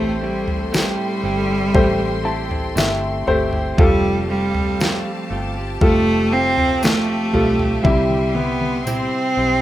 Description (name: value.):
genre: pop ballad.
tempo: 59 BPM.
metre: 4/4.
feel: straight.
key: unclear.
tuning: A4 = 440 Hz.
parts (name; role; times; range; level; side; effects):
clear cello; melody; 0.0-9.6 s; G3 to C4; -20 LUFS; right 1 dB; plate reverb.
clear concert grand piano; accompaniment; 0.0-9.6 s; A2 to A5; -22 LUFS; left 1 dB; plate reverb.
clear studio string section; sustained chords; 0.0-9.6 s; G4 to C6; -30 LUFS; left 3 dB; plate reverb.
direct-recorded clean electric guitar; arpeggios; 0.0-9.6 s; C3 to G4; -28 LUFS; right 4 dB; spring reverb, plate reverb.
vintage muted fingered electric bass; bass; 0.0-9.6 s; F1 to C2; -26 LUFS; equal; none.
pop drum kit; drums; 0.5-9.1 s; kick drum, snare drum, toms; -20 LUFS; equal; overdrive.
tambourine; percussion; 0.7-9.1 s; none; -34 LUFS; left 4 dB; none.
room: light reverb.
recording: rough home demo mix.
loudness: -16 LUFS.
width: side -13 dB against mid.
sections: 0.0-9.6 A section.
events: grand piano fill 1.7-3.8; drum fill 7.8-9.6.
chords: 0.0 Am7; 3.8 Fadd9; 7.8 C.